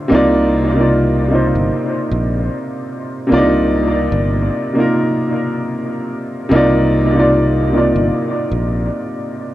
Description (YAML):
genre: lo-fi hip hop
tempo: 75 BPM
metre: 4/4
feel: swing 59% on 16ths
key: C minor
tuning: A4 = 442 Hz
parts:
  - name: dark upright piano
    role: accompaniment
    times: 0.0-9.5 s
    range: C3 to D5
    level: -14 LUFS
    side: equal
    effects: cassette tape, low-pass filter, dub echo
  - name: sustaining fretless electric bass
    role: bass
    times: 0.1-8.9 s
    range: G1 to C2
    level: -18 LUFS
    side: equal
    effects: none
room: moderate spring reverb, RT60 1.9 s, small room ambience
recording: echo-heavy mix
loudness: -13 LUFS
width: side -14 dB against mid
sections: 0.0-9.5 A section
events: none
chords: 0.1 Cm11